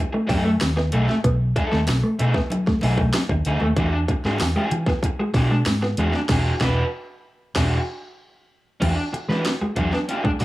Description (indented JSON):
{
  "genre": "funk",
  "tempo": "95 BPM",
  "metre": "4/4",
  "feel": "straight",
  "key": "unclear",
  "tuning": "A4 = 440 Hz",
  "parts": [
    { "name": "raw garage guitar", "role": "accompaniment", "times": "0.0-10.4 s", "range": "A3 to B4", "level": "-25 LUFS", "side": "left 1 dB", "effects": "overdrive, spring reverb" },
    { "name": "mellow electric guitar", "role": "riff", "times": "0.1-10.4 s", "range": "E3 to B3", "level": "-26 LUFS", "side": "right 1 dB", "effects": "warbly pitch drift" },
    { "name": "vintage muted fingered electric bass", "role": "bass", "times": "0.3-10.4 s", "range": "E1 to E3", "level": "-22 LUFS", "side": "equal", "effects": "none" },
    { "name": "drum and bass drum kit", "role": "drums", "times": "0.3-10.4 s", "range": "crash cymbal, hi-hat, kick drum, snare drum", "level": "-24 LUFS", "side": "equal", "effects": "none" },
    { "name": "congas", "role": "percussion", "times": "0.3-10.4 s", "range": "none", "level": "-31 LUFS", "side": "right 1 dB", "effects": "none" },
    { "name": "tambourine", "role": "percussion", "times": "0.6-5.8 s", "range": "none", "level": "-39 LUFS", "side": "left 4 dB", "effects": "none" }
  ],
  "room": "light reverb",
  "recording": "small room ambience",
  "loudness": "-19 LUFS",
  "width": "side -17 dB against mid",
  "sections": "0.0-8.8 A section; 8.8-10.4 B section",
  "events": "band accent 6.3-8.8",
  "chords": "0.0 B6; 3.8 E9"
}